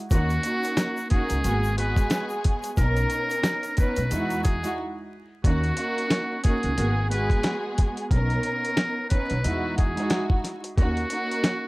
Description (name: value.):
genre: hip hop, boom-bap hip-hop.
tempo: 90 BPM.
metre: 4/4.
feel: swing 58% on 16ths.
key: unclear.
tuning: A4 = 440 Hz.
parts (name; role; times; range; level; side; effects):
trumpet with metal mute; melody; 0.1-11.7 s; F#4 to B4; -30 LUFS; equal; high-pass filter, low-pass filter, tape echo.
dark studio string section; accompaniment; 0.1-11.7 s; G#3 to B4; -28 LUFS; right 1 dB; high-pass filter, low-pass filter, plate reverb.
upright bass; bass; 0.1-11.0 s; G#1 to E2; -26 LUFS; equal; none.
dusty soul sampler-style drum kit; drums; 0.1-11.6 s; hi-hat, kick drum, snare drum; -23 LUFS; equal; none.
tube shaker; percussion; 0.1-4.8 s; none; -46 LUFS; left 4 dB; none.
room: light reverb.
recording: vinyl crackle.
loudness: -22 LUFS.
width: side -22 dB against mid.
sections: 0.0-5.4 A section; 5.4-11.7 A section.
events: break 4.8-5.4.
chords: 0.1 D#m7; 1.4 G#m9; 2.8 Bmaj9; 4.1 Emaj9; 5.4 D#m7; 6.8 G#m9; 8.1 Bmaj9; 9.4 Emaj9; 10.8 D#m7.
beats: | 0.11 0.77 1.44 2.11 | 2.77 3.44 4.11 4.77 | 5.44 6.11 6.77 7.44 | 8.11 8.77 9.44 10.11 | 10.77 11.44.